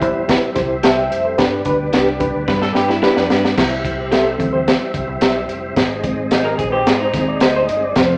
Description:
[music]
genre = uptempo 1960s-style soul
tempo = 109 BPM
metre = 4/4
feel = straight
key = C major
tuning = A4 = 441 Hz
[part]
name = reed electric piano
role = accompaniment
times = 0.0-8.2 s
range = G2 to A5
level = -22 LUFS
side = equal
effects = fast tremolo
[part]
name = tonewheel organ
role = sustained chords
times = 0.0-8.2 s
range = G3 to F4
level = -27 LUFS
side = equal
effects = fast rotary speaker, chorus vibrato
[part]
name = deep dub fingered electric bass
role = bass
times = 0.0-8.2 s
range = F1 to Ab2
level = -30 LUFS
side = equal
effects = none
[part]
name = crunchy breakbeat drum kit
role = drums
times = 0.0-8.1 s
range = crash cymbal, hi-hat, kick drum, snare drum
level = -20 LUFS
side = equal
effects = none
[part]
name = electric guitar through a small old amp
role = stabs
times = 0.8-7.6 s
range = D4 to E5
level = -23 LUFS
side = equal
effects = none
[part]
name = electric guitar through a small old amp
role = riff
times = 2.5-7.8 s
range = D4 to B4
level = -25 LUFS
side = equal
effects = none
[sound]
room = moderate large studio reverb, RT60 1.0 s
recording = none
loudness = -17 LUFS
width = mono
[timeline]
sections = 0.0-3.6 A section; 3.6-8.2 B section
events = drum fill 2.5-3.6; reed electric piano solo 3.6-8.2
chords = 0.0 C; 1.4 G; 3.6 C; 5.8 Ab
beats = 0.29 0.83 | 1.38 1.93 2.48 3.03 | 3.58 4.12 4.67 5.22 | 5.77 6.32 6.87 7.42 | 7.97

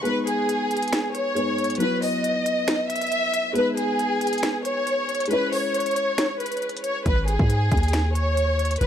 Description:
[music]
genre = hip hop, trap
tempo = 137 BPM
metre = 4/4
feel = half-time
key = G# minor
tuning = A4 = 440 Hz
[part]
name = felt-muted upright piano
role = accompaniment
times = 0.0-7.1 s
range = F#3 to C#5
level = -28 LUFS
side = left 1 dB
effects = none
[part]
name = warm studio violin section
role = melody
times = 0.1-8.9 s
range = G#4 to E5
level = -24 LUFS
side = equal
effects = ping-pong delay
[part]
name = trap drum kit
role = drums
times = 0.1-8.9 s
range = finger snaps, hi-hat, kick drum, snare drum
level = -27 LUFS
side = equal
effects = none
[part]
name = hard-hitting 808-style bass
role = bass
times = 7.1-8.9 s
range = E1 to G#2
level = -22 LUFS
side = equal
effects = none
[sound]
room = light reverb, small room ambience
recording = dark, warm production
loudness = -21 LUFS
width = side -9 dB against mid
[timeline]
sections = 0.1-8.9 A section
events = break 0.1-7.1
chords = 0.1 G#m; 1.8 Esus2; 3.6 G#m; 5.3 C#m; 7.1 G#5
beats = | 0.05 0.49 0.93 1.37 | 1.80 2.24 2.68 3.12 | 3.56 3.99 4.43 4.87 | 5.31 5.75 6.18 6.62 | 7.06 7.50 7.93 8.37 | 8.81

